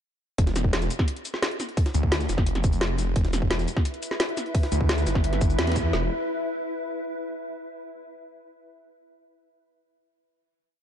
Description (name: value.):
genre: dark technical drum and bass.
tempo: 173 BPM.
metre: 4/4.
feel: straight.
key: E phrygian.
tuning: A4 = 440 Hz.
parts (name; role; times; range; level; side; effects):
snarling distorted saw bass; bass; 0.4-6.1 s; E1 to E2; -25 LUFS; equal; overdrive.
drum and bass drum kit; drums; 0.4-6.0 s; kick drum, snare drum; -24 LUFS; equal; none.
drum and bass drum kit; drums; 0.4-5.8 s; cabasa, hi-hat, snare drum; -29 LUFS; equal; none.
jungle sampler-style drum kit; drums; 0.4-5.8 s; hi-hat, snare drum; -36 LUFS; equal; none.
swarming drone; sustained chords; 3.7-6.1 s; E4 to E5; -31 LUFS; equal; built-in reverb, sidechain pumping.
room: light reverb.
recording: dark, warm production, nothing above 10.9 kHz.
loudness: -23 LUFS.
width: side -9 dB against mid.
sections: 0.4-5.9 drop; 5.9-7.3 final chord.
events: drop 0.4-5.9; band accent 5.6.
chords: 0.4 E5.